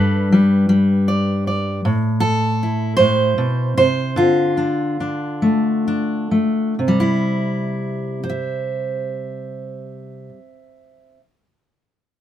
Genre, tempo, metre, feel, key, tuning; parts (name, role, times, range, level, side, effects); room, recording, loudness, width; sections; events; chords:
folk, solo fingerstyle acoustic guitar; 42-53 BPM (dotted quarters); 6/8; straight; C major; A4 = 441 Hz
fingerpicked steel-string acoustic guitar; solo; 0.0-11.2 s; G2 to E5; -16 LUFS; equal
light reverb; minimal, uncompressed stereo recording; -16 LUFS; side -11 dB against mid
0.0-1.8 A section; 1.8-6.8 B section; 6.8-9.7 C section
slowing down 1.8-6.8
0.0 G; 1.8 Am; 4.2 Dm; 6.8 C